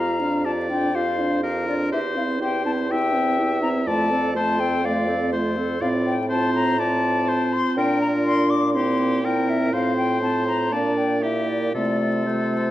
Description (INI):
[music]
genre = quick classical-period movement for wind quintet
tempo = 122 BPM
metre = 4/4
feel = straight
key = F major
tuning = A4 = 436 Hz
[part]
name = silver concert flute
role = melody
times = 0.0-12.7 s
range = C5 to D6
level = -25 LUFS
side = left 4 dB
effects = none
[part]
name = bright oboe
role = second line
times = 0.0-12.7 s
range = G4 to F5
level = -28 LUFS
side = left 1 dB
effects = none
[part]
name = bright clarinet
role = accompaniment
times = 0.0-12.7 s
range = D4 to A4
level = -29 LUFS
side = right 4 dB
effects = none
[part]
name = mellow French horn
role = accompaniment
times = 0.0-12.7 s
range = A3 to F4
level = -25 LUFS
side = equal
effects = none
[part]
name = mellow bassoon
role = bass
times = 0.0-12.7 s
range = E2 to C3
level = -27 LUFS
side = right 1 dB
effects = none
[sound]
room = wet recital hall reverb, RT60 1.5 s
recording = vinyl crackle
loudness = -19 LUFS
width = side -14 dB against mid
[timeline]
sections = 0.0-12.7 A section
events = none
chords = 0.0 Gm7/F; 1.9 C/E; 3.9 F; 5.8 F/A; 7.8 Bb69; 8.8 C7/Bb; 9.7 F/A; 10.7 Gm/Bb; 11.7 F/C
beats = 0.45 0.94 1.43 | 1.92 2.41 2.90 3.38 | 3.87 4.36 4.84 5.33 | 5.81 6.30 6.79 7.28 | 7.77 8.26 8.75 9.25 | 9.73 10.22 10.72 11.23 | 11.75 12.27